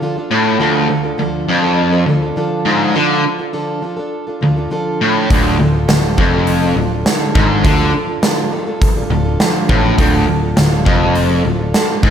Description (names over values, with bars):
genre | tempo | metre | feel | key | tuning
classic rock | 102 BPM | 4/4 | straight | D minor | A4 = 440 Hz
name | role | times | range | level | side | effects
picked plugged-in steel-string acoustic guitar | accompaniment | 0.0-12.1 s | D3 to A4 | -20 LUFS | right 1 dB | none
distorted electric guitar | riff | 0.3-12.1 s | D2 to D3 | -15 LUFS | equal | distortion, slapback echo
picked electric bass | bass | 5.3-12.1 s | D1 to D2 | -18 LUFS | equal | none
big rock drum kit | drums | 5.3-12.1 s | hi-hat, kick drum, snare drum | -16 LUFS | equal | none
room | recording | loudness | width
moderate lush hall reverb, RT60 1.7 s, small room ambience | big arena sound | -12 LUFS | side -8 dB against mid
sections
0.0-12.1 A section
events
none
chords
0.0 Dm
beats
0.02 | 0.61 1.19 1.78 2.37 | 2.96 3.54 4.13 4.72 | 5.30 5.89 6.47 7.06 | 7.64 8.23 8.82 9.40 | 9.99 10.57 11.16 11.74